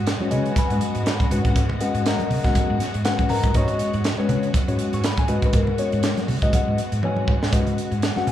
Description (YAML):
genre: electric jazz fusion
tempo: 121 BPM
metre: 4/4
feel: swing 56% on 16ths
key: G# minor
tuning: A4 = 439 Hz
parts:
  - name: warm studio string section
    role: sustained chords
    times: 0.0-8.3 s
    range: B2 to F#4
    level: -32 LUFS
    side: equal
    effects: none
  - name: woody fretless electric bass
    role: bass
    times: 0.0-8.3 s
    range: G#2 to C#3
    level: -25 LUFS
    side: equal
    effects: none
  - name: crisp fusion drum kit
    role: drums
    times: 0.1-8.3 s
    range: hi-hat, kick drum, snare drum, toms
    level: -23 LUFS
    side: right 1 dB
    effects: none
  - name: mellow tine electric piano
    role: accompaniment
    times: 0.2-8.3 s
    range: G#3 to C#6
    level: -24 LUFS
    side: left 4 dB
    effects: phaser, slapback echo
  - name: congas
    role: percussion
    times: 0.2-8.3 s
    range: none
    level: -31 LUFS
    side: right 2 dB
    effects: slapback echo
room: light reverb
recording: live gig heard through the venue's PA, club reverb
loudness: -19 LUFS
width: side -11 dB against mid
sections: 0.0-8.3 A section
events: drum fill 7.0-7.5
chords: 0.0 G#m9